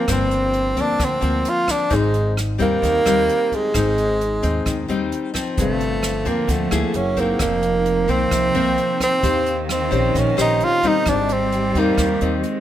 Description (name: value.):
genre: bossa nova.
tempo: 131 BPM.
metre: 4/4.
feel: straight.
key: unclear.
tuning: A4 = 441 Hz.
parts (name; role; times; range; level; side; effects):
breathy tenor saxophone; melody; 0.0-12.5 s; Ab3 to F4; -20 LUFS; right 1 dB; none.
nylon-string guitar; accompaniment; 0.0-12.6 s; F2 to C5; -23 LUFS; left 4 dB; none.
upright bass; bass; 0.1-12.4 s; F1 to Eb2; -25 LUFS; right 1 dB; none.
jazz brush drum kit; drums; 0.1-12.5 s; hi-hat, kick drum, rim click; -27 LUFS; right 1 dB; none.
vibraphone with medium mallets; accompaniment; 5.5-12.6 s; C4 to F#5; -31 LUFS; left 1 dB; none.
dark cello; second line; 5.6-12.6 s; C3 to Ab3; -26 LUFS; right 4 dB; none.
room: light reverb.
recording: none.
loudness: -17 LUFS.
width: side -11 dB against mid.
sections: 0.0-12.6 A section.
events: none.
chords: 0.0 Gm7; 1.9 Abmaj7; 5.6 Gm11; 6.9 F#9; 7.4 F7sus4; 9.2 Eb13; 11.1 Abmaj7.